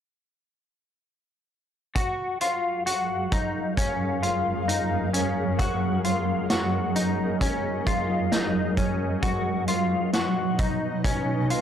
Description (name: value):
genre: dream pop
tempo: 66 BPM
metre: 4/4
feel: straight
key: F# major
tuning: A4 = 440 Hz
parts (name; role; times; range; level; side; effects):
- granular cloud pad; sustained chords; 2.8-11.6 s; F#2 to E#5; -26 LUFS; right 1 dB; built-in reverb
- semi-hollow electric guitar; arpeggios; 2.0-11.6 s; C#4 to F#4; -27 LUFS; left 2 dB; analog chorus, analog delay
- vintage drum kit; drums; 2.0-11.6 s; hi-hat, kick drum, snare drum; -28 LUFS; equal; none
room: light reverb, small room ambience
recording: dry, gritty hardware recording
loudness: -23 LUFS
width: side -9 dB against mid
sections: 2.0-11.6 A section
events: none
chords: 2.0 F#maj7; 9.2 B